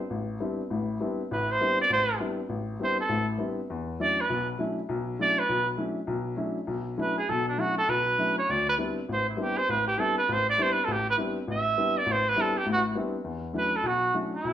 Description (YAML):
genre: jazz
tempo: 201 BPM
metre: 4/4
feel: swing 61% on 8ths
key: E minor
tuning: A4 = 435 Hz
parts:
  - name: warm baby grand piano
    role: accompaniment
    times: 0.1-14.5 s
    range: A1 to E4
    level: -30 LUFS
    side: left 2 dB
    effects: none
  - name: clear trumpet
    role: melody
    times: 1.3-14.5 s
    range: D4 to E5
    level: -25 LUFS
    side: right 2 dB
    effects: none
room: moderate large studio reverb, RT60 0.8 s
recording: band playing live in one room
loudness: -25 LUFS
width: side -10 dB against mid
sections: 0.0-13.3 A section; 13.3-14.5 B section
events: trumpet solo 0.0-13.3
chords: 0.0 D13sus4; 3.7 E13sus4; 8.5 D13sus4; 13.3 E13sus4